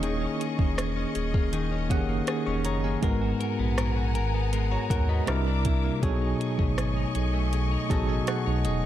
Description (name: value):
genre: contemporary R&B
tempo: 80 BPM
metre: 4/4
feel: straight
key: G# minor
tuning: A4 = 440 Hz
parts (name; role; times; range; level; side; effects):
- barky tine electric piano; accompaniment; 0.0-8.9 s; G#2 to C#6; -29 LUFS; right 2 dB; medium stereo tremolo
- rich studio string section; sustained chords; 0.0-8.9 s; A3 to D6; -36 LUFS; left 2 dB; none
- direct-recorded clean electric guitar; arpeggios; 0.0-8.9 s; B2 to A#4; -33 LUFS; left 6 dB; none
- sub bass with octave; bass; 0.0-8.9 s; D#1 to D#2; -28 LUFS; equal; none
- smooth R&B drum kit; drums; 0.0-8.8 s; hi-hat, kick drum, rim click; -29 LUFS; equal; none
room: light reverb, digital ambience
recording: dark, warm production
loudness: -24 LUFS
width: side -12 dB against mid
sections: 0.0-8.9 A section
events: tine electric piano fill 7.5-8.9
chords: 0.0 D#7sus4; 3.0 G#m9; 5.3 C9; 6.0 B13